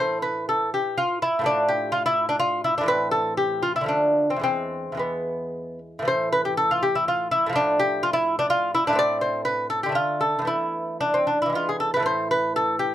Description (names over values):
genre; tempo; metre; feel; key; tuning
classical, baroque-style dance for lute; 107-128 BPM; 3/4; rubato; A minor; A4 = 441 Hz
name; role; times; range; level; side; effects
lute; solo; 0.0-12.9 s; E2 to D5; -21 LUFS; equal; none
room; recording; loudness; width
little or no reverb; close, detailed microphones; -21 LUFS; side -12 dB against mid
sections
0.0-6.1 A section; 6.1-12.9 A section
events
none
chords
0.0 A5; 1.5 Fmaj13/A; 2.9 Am; 3.9 Dm; 4.4 E; 6.1 A5; 7.6 Fmaj13/A; 9.0 Am; 10.0 Dm; 10.5 Esus4; 11.6 E; 12.1 A5